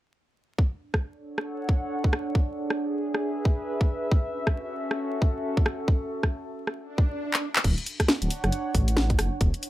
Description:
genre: UK garage, two-step garage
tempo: 136 BPM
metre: 4/4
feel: swing 61% on 16ths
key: unclear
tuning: A4 = 440 Hz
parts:
  - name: electronic kick drum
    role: drums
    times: 0.6-9.5 s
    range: none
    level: -23 LUFS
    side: equal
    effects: small room reverb
  - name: warbly tape-like pad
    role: texture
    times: 1.2-9.7 s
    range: C#4 to F#5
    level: -31 LUFS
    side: right 1 dB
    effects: chorus, built-in reverb, sidechain pumping
  - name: garage drum kit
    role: drums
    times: 0.9-9.7 s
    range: crash cymbal, handclaps, hi-hat, rim click, snare drum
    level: -26 LUFS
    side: equal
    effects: small room reverb
  - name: swell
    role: sound effects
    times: 6.9-7.6 s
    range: none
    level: -33 LUFS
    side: right 1 dB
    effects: none
  - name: dark detuned saw bass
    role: bass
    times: 7.6-9.5 s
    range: D1 to A1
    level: -25 LUFS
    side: equal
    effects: none
room: light reverb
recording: vinyl crackle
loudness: -24 LUFS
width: side -15 dB against mid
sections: 0.6-7.6 A section; 7.6-9.7 B section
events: swell 6.9-7.6; drum fill 7.3-7.6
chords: 0.6 Dmaj7; 2.4 E7; 4.1 A6; 5.7 F#m7; 7.6 Dmaj7

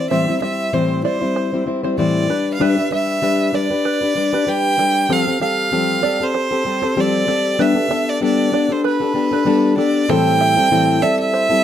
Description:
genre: pop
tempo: 96 BPM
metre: 4/4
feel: swing 55% on 16ths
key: unclear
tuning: A4 = 440 Hz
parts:
  - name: clear violin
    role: melody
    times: 0.0-11.6 s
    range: B4 to G5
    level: -19 LUFS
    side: right 2 dB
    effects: none
  - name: fingerpicked plugged-in steel-string acoustic guitar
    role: accompaniment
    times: 0.0-11.6 s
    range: A2 to C5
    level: -17 LUFS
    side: left 3 dB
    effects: none
  - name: open-back banjo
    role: arpeggios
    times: 0.1-11.5 s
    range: A4 to F5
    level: -25 LUFS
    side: right 9 dB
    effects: none
  - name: felt-muted upright piano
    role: accompaniment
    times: 10.1-11.6 s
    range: E4 to G5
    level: -29 LUFS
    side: left 3 dB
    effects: none
room: light reverb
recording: close, detailed microphones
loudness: -15 LUFS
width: side -10 dB against mid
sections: 0.0-10.1 A section; 10.1-11.6 B section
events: none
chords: 0.1 Am7; 2.3 G; 5.1 Fadd9; 7.6 Gadd9; 10.1 Am7

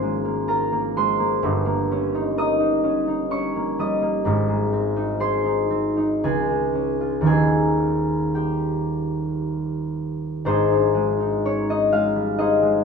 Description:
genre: classical, solo harp piece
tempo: 55-65 BPM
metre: 3/4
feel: rubato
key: Ab major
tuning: A4 = 440 Hz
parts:
  - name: concert harp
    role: solo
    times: 0.0-12.8 s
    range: Eb1 to Eb6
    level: -19 LUFS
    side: equal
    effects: none
room: moderate stone room reverb, RT60 1.0 s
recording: minimal, uncompressed stereo recording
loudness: -19 LUFS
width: side -5 dB against mid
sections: 0.0-10.4 A section; 10.4-12.8 B section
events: none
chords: 0.0 Bbm7/Ab; 1.4 Eb7/G; 4.2 Ab; 6.2 Db; 7.2 Eb; 10.4 Ab

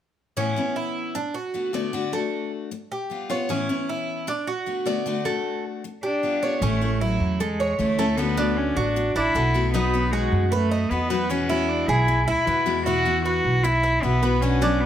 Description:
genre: latin, Cuban son and guajira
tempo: 154 BPM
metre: 4/4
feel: straight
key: A major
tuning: A4 = 440 Hz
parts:
  - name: picked steel-string acoustic guitar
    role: accompaniment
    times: 0.4-14.9 s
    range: A2 to F#4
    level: -27 LUFS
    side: left 6 dB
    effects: none
  - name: Cuban tres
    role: arpeggios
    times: 0.4-14.9 s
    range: C#4 to E5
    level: -27 LUFS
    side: right 3 dB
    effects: none
  - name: rich cello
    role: melody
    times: 6.0-14.9 s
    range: F#3 to F#4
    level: -23 LUFS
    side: equal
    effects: none
  - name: upright bass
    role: bass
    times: 6.6-14.9 s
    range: A1 to F#2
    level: -25 LUFS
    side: right 1 dB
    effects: none
room: light reverb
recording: none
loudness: -21 LUFS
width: side -10 dB against mid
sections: 0.4-6.6 A section; 6.6-14.9 B section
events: none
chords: 0.4 Aadd9; 1.2 Bm7; 1.9 D; 2.7 G7; 3.5 Aadd9; 4.3 Bm7; 5.1 D; 5.8 G7; 6.6 A; 8.2 D6; 9.7 B; 11.3 Eadd9; 12.9 Esus2

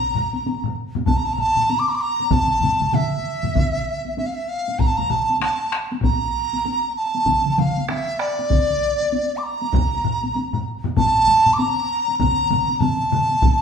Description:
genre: japanese traditional, taiko drum ensemble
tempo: 97 BPM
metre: 4/4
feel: swing 60% on 16ths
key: A miyako bushi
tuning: A4 = 441 Hz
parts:
  - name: mellow hollow dizi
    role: melody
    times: 0.0-13.6 s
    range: D5 to D6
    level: -20 LUFS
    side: equal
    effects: none
  - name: taiko ensemble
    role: percussion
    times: 0.2-13.6 s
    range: none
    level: -26 LUFS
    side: left 2 dB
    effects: none
  - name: taiko ensemble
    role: percussion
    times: 0.3-13.6 s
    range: none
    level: -29 LUFS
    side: left 1 dB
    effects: none
  - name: taiko ensemble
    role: percussion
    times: 1.1-13.6 s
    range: none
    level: -23 LUFS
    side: equal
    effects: none
  - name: taiko ensemble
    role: percussion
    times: 2.3-13.6 s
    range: none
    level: -25 LUFS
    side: right 2 dB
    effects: none
room: wet large studio reverb, RT60 1.1 s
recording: band playing live in one room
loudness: -18 LUFS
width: side -7 dB against mid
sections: 0.0-13.6 A section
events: none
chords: none

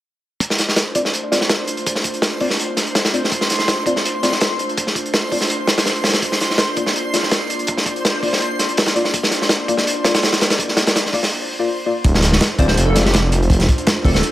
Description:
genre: drum and bass, jungle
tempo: 165 BPM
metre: 4/4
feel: straight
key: D minor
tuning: A4 = 441 Hz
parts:
  - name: airy breathy pad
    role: sustained chords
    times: 0.9-14.3 s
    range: A3 to D5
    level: -26 LUFS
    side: equal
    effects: chorus
  - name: crunchy breakbeat drum kit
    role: drums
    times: 0.4-14.3 s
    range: hi-hat, kick drum, snare drum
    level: -17 LUFS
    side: equal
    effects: high-pass filter on kick, high-pass filter on hats, high-pass filter on snare, high-pass filter on room
  - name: backwards swelling texture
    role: texture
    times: 1.6-11.3 s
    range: C5 to C6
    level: -27 LUFS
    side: equal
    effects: built-in reverb
  - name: deep mellow chord stab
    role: stabs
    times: 1.0-14.1 s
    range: Bb3 to D5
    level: -24 LUFS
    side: left 2 dB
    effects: chorus, dub echo
  - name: detuned saw bass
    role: bass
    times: 12.0-14.2 s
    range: D1 to F1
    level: -16 LUFS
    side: equal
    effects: none
  - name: dusty soul sampler-style drum kit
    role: drums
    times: 12.0-14.3 s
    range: hi-hat, snare drum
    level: -30 LUFS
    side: right 2 dB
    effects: none
  - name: plucky unison lead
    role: melody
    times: 12.6-14.2 s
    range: G4 to C5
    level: -24 LUFS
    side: right 1 dB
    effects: dub echo
room: light reverb, small room ambience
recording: none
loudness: -15 LUFS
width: side -14 dB against mid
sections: 0.4-12.0 A section; 12.0-14.3 B section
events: filter sweep on synth stab 0.4-12.0; break 11.3-12.0; drop 12.0-14.3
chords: 0.4 Dm7; 6.2 Bb; 12.0 Dm7

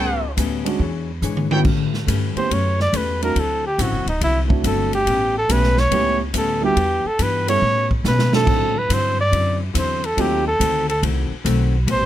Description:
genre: jazz, big band swing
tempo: 141 BPM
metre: 4/4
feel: swing 68% on 8ths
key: A mixolydian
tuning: A4 = 440 Hz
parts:
  - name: archtop guitar, miked and amplified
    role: accompaniment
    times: 0.0-12.1 s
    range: A2 to C#5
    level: -27 LUFS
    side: left 8 dB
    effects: none
  - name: mellow trumpet section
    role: stabs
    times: 0.0-1.6 s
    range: A4 to G5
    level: -24 LUFS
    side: right 2 dB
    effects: none
  - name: upright bass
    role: bass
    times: 0.0-12.1 s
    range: D1 to B2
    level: -22 LUFS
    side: equal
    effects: none
  - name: swinging big-band drum kit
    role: drums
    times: 0.4-12.0 s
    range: crash cymbal, hi-hat, kick drum, ride cymbal, snare drum, toms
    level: -24 LUFS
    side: equal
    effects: none
  - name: warm grand piano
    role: accompaniment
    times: 0.6-10.4 s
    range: A2 to A4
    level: -24 LUFS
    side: right 6 dB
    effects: none
  - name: warm trumpet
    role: melody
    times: 2.4-12.1 s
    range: D#4 to D5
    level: -20 LUFS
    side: right 1 dB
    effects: none
room: little or no reverb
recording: close, detailed microphones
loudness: -17 LUFS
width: side -12 dB against mid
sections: 0.0-1.7 A section; 1.7-12.1 B section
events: drum fill 1.2-1.7, 8.0-8.5; trumpet solo 1.7-12.1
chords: 0.0 A9; 0.8 E13; 1.7 A9; 3.4 D9; 5.1 A9; 6.8 Em7; 7.6 A9; 8.5 D9; 10.2 D#dim7

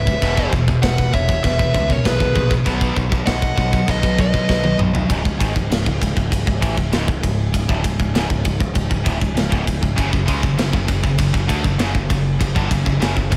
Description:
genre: heavy metal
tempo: 98 BPM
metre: 4/4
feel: straight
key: unclear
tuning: A4 = 440 Hz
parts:
  - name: high-gain lead guitar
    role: melody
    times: 0.0-4.8 s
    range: B4 to F#5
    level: -26 LUFS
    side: equal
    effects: distortion, slapback echo, tape echo
  - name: high-gain lead guitar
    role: second line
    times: 0.0-4.8 s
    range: G#4 to D#5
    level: -31 LUFS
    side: equal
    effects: distortion, slapback echo
  - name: distorted electric guitar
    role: riff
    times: 0.0-13.4 s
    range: C#2 to B3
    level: -26 LUFS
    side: equal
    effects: overdrive, slapback echo
  - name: scooped high-gain guitar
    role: riff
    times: 0.0-5.1, 10.0-13.4 s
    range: C#2 to B3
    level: -25 LUFS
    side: equal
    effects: distortion
  - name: modern bright picked electric bass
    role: bass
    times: 0.0-13.4 s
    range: C#1 to D2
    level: -25 LUFS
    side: equal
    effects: none
  - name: tight metal drum kit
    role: drums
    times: 0.1-13.4 s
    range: china cymbal, kick drum, ride cymbal, snare drum, toms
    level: -22 LUFS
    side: equal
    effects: none
room: light reverb, small room ambience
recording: none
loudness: -18 LUFS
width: mono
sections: 0.0-5.1 A section; 5.1-13.4 B section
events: drum fill 4.5-5.1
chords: 0.2 E5; 2.7 B; 5.1 C#5; 10.0 F#5

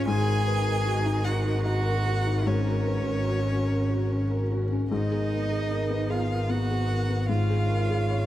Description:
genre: neoclassical piano and strings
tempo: 75 BPM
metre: 3/4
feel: rubato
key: G# dorian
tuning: A4 = 440 Hz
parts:
  - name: rich violin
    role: melody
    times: 0.0-8.3 s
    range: C#5 to G#5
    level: -34 LUFS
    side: left 3 dB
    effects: none
  - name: rich cello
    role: second line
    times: 0.0-8.3 s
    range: C#4 to G#4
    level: -33 LUFS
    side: right 8 dB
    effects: analog delay
  - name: felt-muted upright piano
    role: accompaniment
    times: 0.0-8.3 s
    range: G#2 to C#5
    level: -29 LUFS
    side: left 2 dB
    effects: none
  - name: warm symphonic string section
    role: sustained chords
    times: 0.0-8.3 s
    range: G#3 to C#5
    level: -36 LUFS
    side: right 2 dB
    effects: none
  - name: warm double bass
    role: bass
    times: 0.0-8.3 s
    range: G#1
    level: -27 LUFS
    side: equal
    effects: none
room: light reverb, studio reverb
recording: dark, warm production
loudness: -24 LUFS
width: side -13 dB against mid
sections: 0.0-8.3 A section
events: none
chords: 0.1 D#m/G#; 2.5 F#/G#; 4.9 G#madd9; 7.3 C#/G#

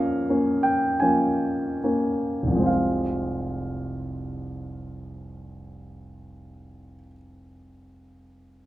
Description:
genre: classical, romantic nocturne for solo piano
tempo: 33-45 BPM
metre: 3/4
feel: rubato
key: F minor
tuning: A4 = 441 Hz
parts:
  - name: warm grand piano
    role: solo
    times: 0.0-8.7 s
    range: F1 to Ab5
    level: -24 LUFS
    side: equal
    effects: none
room: moderate large studio reverb, RT60 1.3 s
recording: none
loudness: -22 LUFS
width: side -15 dB against mid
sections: 0.0-2.7 A section; 2.7-7.4 B section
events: slowing down 0.0-2.7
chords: 0.0 Bbm/F; 2.7 Fm

